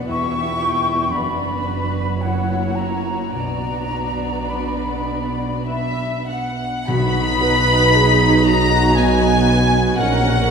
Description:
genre	classical, slow romantic movement for symphony orchestra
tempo	46-61 BPM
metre	3/4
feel	rubato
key	B minor, B major from 6.9 s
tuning	A4 = 441 Hz
part	warm chamber violin section	melody	0.0-10.5 s	B4 to B5	-23 LUFS	left 3 dB	none
part	warm chamber violin section	second line	0.0-10.5 s	F#4 to B5	-25 LUFS	equal	none
part	dark chamber viola section	accompaniment	0.0-10.5 s	A#3 to B4	-22 LUFS	right 2 dB	none
part	concert harp	arpeggios	0.0-10.5 s	E2 to F#5	-28 LUFS	left 5 dB	none
part	warm chamber cello section	bass	0.0-10.5 s	E2 to B2	-26 LUFS	right 2 dB	none
part	warm chamber double bass section	bass	0.0-10.5 s	E1 to B1	-26 LUFS	right 2 dB	none
part	small flute group	second line	0.1-6.3 s	F#5 to C#6	-24 LUFS	left 2 dB	none
part	mellow tuba	bass	6.9-10.5 s	A#1 to B1	-22 LUFS	right 3 dB	none
part	timpani	percussion	6.9-8.4 s	B2	-27 LUFS	left 1 dB	none
room	wet church reverb, RT60 2.8 s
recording	recorded in a church or concert hall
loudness	-16 LUFS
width	side -6 dB against mid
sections	0.0-6.9 A section; 6.9-10.5 B section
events	none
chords	0.1 Em; 1.1 Bm/F#; 2.2 F#7; 3.3 Bm; 6.9 B; 10.0 F#/A#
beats	| 0.09 1.13 2.21 | 3.35 4.51 5.68 | 6.89 7.95 8.97 | 9.98

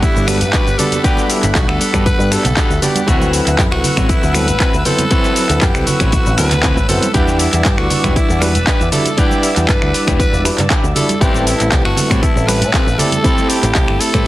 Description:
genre	nu-disco, nu disco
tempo	118 BPM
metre	4/4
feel	straight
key	G major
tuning	A4 = 440 Hz
part	growling tenor saxophone	melody	0.0-14.3 s	E4 to B4	-21 LUFS	equal	none
part	overdriven tine electric piano	accompaniment	0.0-14.3 s	F#3 to B5	-20 LUFS	equal	medium tremolo, slapback echo
part	lush unison pad	sustained chords	0.0-14.3 s	G3 to E6	-25 LUFS	left 1 dB	chorus, sidechain pumping
part	electric guitar at the edge of break-up	riff	0.0-14.3 s	C4 to D5	-22 LUFS	left 1 dB	wide subtle chorus, slapback echo
part	picked electric bass with an envelope filter	bass	0.0-14.3 s	E1 to A2	-18 LUFS	equal	tube saturation, sidechain pumping
part	electronic kick drum	drums	0.0-14.2 s	none	-16 LUFS	equal	none
part	pop drum kit	drums	0.0-14.2 s	cabasa, finger snaps, handclaps, hi-hat	-19 LUFS	equal	none
part	congas	percussion	0.3-14.2 s	none	-23 LUFS	right 3 dB	none
room	light reverb, digital ambience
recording	heavily compressed radio sound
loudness	-11 LUFS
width	side -16 dB against mid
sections	0.0-14.3 A section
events	none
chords	0.0 Gmaj7; 3.1 D13; 7.1 Em7; 11.2 Am7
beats	0.03 0.53 | 1.04 1.55 2.06 2.57 | 3.08 3.58 4.09 4.60 | 5.11 5.62 6.13 6.64 | 7.14 7.65 8.16 8.67 | 9.18 9.69 10.20 10.70 | 11.21 11.72 12.23 12.74 | 13.25 13.76 14.26

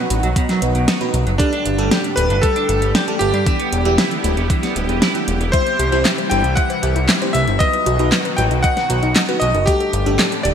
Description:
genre	synthwave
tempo	116 BPM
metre	4/4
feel	straight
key	unclear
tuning	A4 = 440 Hz
part	lush unison pad	sustained chords	0.0-10.5 s	A2 to G4	-25 LUFS	equal	chorus, phaser, sidechain pumping
part	clean electric guitar	riff	0.0-5.4 s	B2 to G4	-26 LUFS	right 4 dB	lush chorus, digital delay
part	FM electric piano with soft pad layer	stabs	0.1-10.5 s	F#3 to C5	-25 LUFS	right 2 dB	chorus, phaser, digital delay
part	fat analog bass	bass	0.1-10.5 s	D1 to G2	-19 LUFS	equal	none
part	pop drum kit	drums	0.1-10.5 s	handclaps, hi-hat, snare drum	-20 LUFS	equal	overdrive, gated reverb
part	electronic kick drum	drums	0.4-9.8 s	none	-18 LUFS	equal	overdrive
part	bright electric grand piano	melody	1.4-10.5 s	D4 to G5	-20 LUFS	left 1 dB	lush chorus, digital delay
part	warbly dusty pluck	arpeggios	5.5-10.5 s	D4 to E5	-26 LUFS	left 4 dB	chorus, digital delay
room	moderate lush hall reverb, RT60 2.2 s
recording	bright 1980s-style digital production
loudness	-14 LUFS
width	side -8 dB against mid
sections	0.0-10.5 A section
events	none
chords	0.0 B; 1.4 Gsus2; 3.5 Em7; 5.5 C; 7.6 B; 9.7 Gsus2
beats	0.36 0.88 | 1.40 1.91 2.43 2.95 | 3.47 3.98 4.50 5.02 | 5.54 6.05 6.57 7.09 | 7.60 8.12 8.64 9.16 | 9.67 10.19

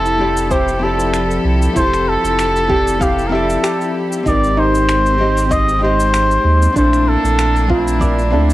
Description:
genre	sunset chillout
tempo	96 BPM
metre	4/4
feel	swing 55% on 16ths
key	F major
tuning	A4 = 440 Hz
part	trumpet with cup mute	melody	0.0-8.5 s	E4 to Eb5	-18 LUFS	equal	analog delay, plate reverb
part	nylon-string guitar	accompaniment	0.0-8.5 s	C4 to Eb5	-21 LUFS	left 1 dB	auto-pan, cassette tape
part	rich chamber string section	sustained chords	0.0-8.5 s	F3 to A4	-22 LUFS	left 1 dB	cassette tape
part	warm sub bass	bass	0.0-8.5 s	F1 to Eb2	-18 LUFS	equal	none
part	electronic shaker and finger snaps	drums	0.1-8.5 s	none	-26 LUFS	equal	cassette tape
part	soft round pluck	arpeggios	0.5-8.5 s	D4 to F5	-21 LUFS	right 1 dB	chorus, cassette tape, analog delay
part	electronic kick drum	drums	0.5-8.1 s	none	-21 LUFS	equal	cassette tape
room	moderate studio reverb, RT60 0.6 s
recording	home recording on cassette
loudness	-12 LUFS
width	side -16 dB against mid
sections	0.0-8.5 A section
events	none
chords	0.0 Fmaj9; 4.3 Abmaj7; 6.8 Bbmaj9#11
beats	0.51 1.13 | 1.76 2.38 3.01 3.63 | 4.26 4.88 5.51 6.13 | 6.76 7.38 8.01

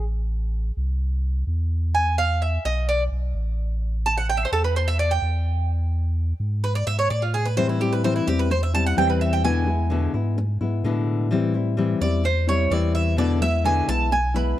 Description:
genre	latin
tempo	128 BPM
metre	4/4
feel	straight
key	A minor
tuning	A4 = 440 Hz
part	Cuban tres	arpeggios	0.0-14.6 s	E4 to A5	-24 LUFS	right 3 dB	none
part	pure sine sub bass	bass	0.0-14.5 s	A1 to A2	-23 LUFS	equal	none
part	nylon-string guitar	accompaniment	7.6-14.6 s	B2 to E4	-24 LUFS	left 5 dB	none
room	small room ambience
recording	dry, close 1970s-style studio recording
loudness	-20 LUFS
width	side -13 dB against mid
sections	0.0-14.6 A section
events	Cuban tres solo 0.0-14.6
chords	0.1 Am; 1.9 E5; 3.8 A5; 5.7 E; 7.6 Am7; 9.4 E7; 11.3 Am7; 13.2 E7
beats	| 0.07 0.54 1.01 1.48 | 1.95 2.42 2.89 3.35 | 3.82 4.29 4.76 5.23 | 5.70 6.17 6.63 7.10 | 7.57 8.04 8.51 8.98 | 9.44 9.91 10.38 10.85 | 11.31 11.78 12.25 12.72 | 13.19 13.65 14.12

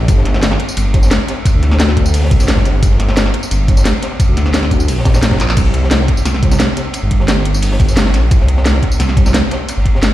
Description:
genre	liquid drum and bass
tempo	175 BPM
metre	4/4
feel	straight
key	unclear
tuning	A4 = 440 Hz
part	swelling detuned saw bass	bass	0.0-10.1 s	G1 to D2	-14 LUFS	equal	none
part	crunchy breakbeat drum kit	drums	0.1-10.1 s	hi-hat, ride cymbal, snare drum	-23 LUFS	equal	high-pass filter on cymbals, high-pass filter on hats, high-pass filter on snare, high-pass filter on room
part	electronic kick drum	drums	0.1-9.9 s	none	-13 LUFS	equal	none
part	garage drum kit	drums	0.1-10.1 s	crash cymbal, handclaps, hi-hat, snare drum, tambourine	-17 LUFS	equal	none
room	little or no reverb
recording	played on a big sound system in a bare room, large studio reverb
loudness	-11 LUFS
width	side -14 dB against mid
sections	0.0-5.6 A section; 5.6-10.1 A section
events	drop 0.0-5.6, 5.6-10.1; drum fill 5.4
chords	none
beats	| 0.08 0.43 0.77 1.11 | 1.46 1.80 2.14 2.48 | 2.83 3.17 3.51 3.85 | 4.20 4.54 4.88 5.23 | 5.57 5.91 6.25 6.60 | 6.94 7.28 7.63 7.97 | 8.31 8.65 9.00 9.34 | 9.68 10.03

